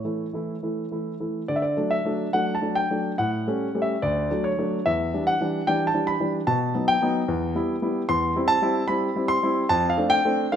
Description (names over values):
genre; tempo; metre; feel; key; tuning
classical-period piano sonatina; 73 BPM; 2/4; uneven beats, rubato; D major; A4 = 440 Hz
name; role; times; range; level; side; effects
warm concert grand piano; solo; 0.0-10.6 s; D2 to C6; -22 LUFS; equal; none
room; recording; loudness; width
moderate recital hall reverb, RT60 1.8 s; none; -22 LUFS; side -8 dB against mid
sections
0.0-1.5 A section; 1.5-10.6 A section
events
none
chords
0.0 A; 1.5 D; 3.2 A7; 4.0 D; 4.9 Em7; 6.5 B7; 7.3 Em; 8.1 C/E; 9.7 Dm7/F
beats
0.62 | 1.49 2.33 | 3.18 4.02 | 4.86 5.67 | 6.47 7.28 | 8.08 8.88 | 9.70 10.53